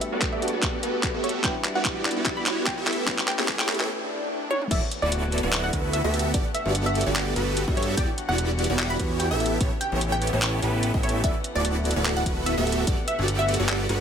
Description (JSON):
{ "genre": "future bass", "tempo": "147 BPM", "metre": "4/4", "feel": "swing 54% on 16ths, half-time", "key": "D major", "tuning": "A4 = 440 Hz", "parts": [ { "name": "wide unison pluck", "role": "melody", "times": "0.0-13.6 s", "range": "C#5 to B5", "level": "-31 LUFS", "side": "equal", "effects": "sidechain pumping, ping-pong delay" }, { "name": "dark concert grand piano", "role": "accompaniment", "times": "0.0-4.7 s", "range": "G3 to B4", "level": "-35 LUFS", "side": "left 4 dB", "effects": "sidechain pumping, ping-pong delay" }, { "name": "warm studio string section", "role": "sustained chords", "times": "0.0-14.0 s", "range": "B2 to F#5", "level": "-37 LUFS", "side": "equal", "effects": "vintage 12-bit sampler grit, sidechain pumping" }, { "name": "pop drum kit", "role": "drums", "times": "0.0-14.0 s", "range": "crash cymbal, handclaps, hi-hat, toms", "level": "-28 LUFS", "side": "equal", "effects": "studio reverb" }, { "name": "riser and swell", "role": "sound effects", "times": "0.9-4.7 s", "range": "none", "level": "-37 LUFS", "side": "left 1 dB", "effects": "none" }, { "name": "supersaw chords", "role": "riff", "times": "0.1-14.0 s", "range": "B3 to E5", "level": "-28 LUFS", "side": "right 1 dB", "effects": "phaser, sidechain pumping, low-pass filter" }, { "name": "electronic kick drum", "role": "drums", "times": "0.2-13.0 s", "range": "none", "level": "-28 LUFS", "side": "equal", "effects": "studio reverb" }, { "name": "concert harp", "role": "arpeggios", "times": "4.7-14.0 s", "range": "B3 to G4", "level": "-37 LUFS", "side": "left 4 dB", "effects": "none" }, { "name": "wide unison pluck", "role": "arpeggios", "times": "4.7-14.0 s", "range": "B4 to E5", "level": "-37 LUFS", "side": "equal", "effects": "sidechain pumping, ping-pong delay" }, { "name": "fat analog bass", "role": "bass", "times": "4.7-14.0 s", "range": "D1 to G2", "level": "-27 LUFS", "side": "equal", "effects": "sidechain pumping" } ], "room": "light reverb, digital ambience", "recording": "high-pass filter", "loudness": "-22 LUFS", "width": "side -8 dB against mid", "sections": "0.0-4.7 A section; 4.7-14.0 B section", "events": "build-up 0.0-4.7; drum fill 0.0-3.9, 4.5; filter sweep on synth pluck 0.0-4.7; break 3.9-4.7; swell 3.9-4.7; drop 4.7-14.0", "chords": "0.0 Gmaj9; 1.4 Em9; 2.9 A9; 4.7 D69; 6.1 Gmaj9; 8.0 Em9; 9.4 A9; 11.2 D69" }